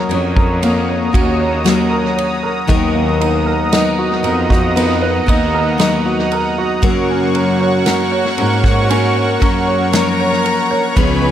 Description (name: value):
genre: pop ballad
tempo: 58 BPM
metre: 4/4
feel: straight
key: unclear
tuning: A4 = 441 Hz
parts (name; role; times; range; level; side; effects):
- warm upright piano; accompaniment; 0.0-11.3 s; Db3 to Db5; -20 LUFS; right 4 dB; none
- warm analog pad; sustained chords; 0.0-11.3 s; Bb4 to Eb6; -20 LUFS; right 1 dB; chorus, tremolo
- picked steel-string acoustic guitar; arpeggios; 0.0-11.3 s; Gb2 to Bb4; -19 LUFS; left 7 dB; tape echo
- bright chamber cello section; bass; 0.1-11.3 s; Db2 to Ab2; -19 LUFS; equal; none
- unplugged drum kit; drums; 0.1-11.2 s; kick drum, ride cymbal, snare drum; -20 LUFS; equal; tape echo
- warm chamber violin section; second line; 6.8-11.3 s; Gb4 to Cb6; -20 LUFS; right 2 dB; none
room: studio ambience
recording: echo-heavy mix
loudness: -12 LUFS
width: side -10 dB against mid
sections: 0.0-11.3 A section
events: none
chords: 0.0 Ebm7; 2.7 Bmaj7/D#; 6.8 Gbmaj7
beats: 0.62 1.66 | 2.69 3.73 4.76 5.80 | 6.83 7.87 8.90 9.93 | 10.97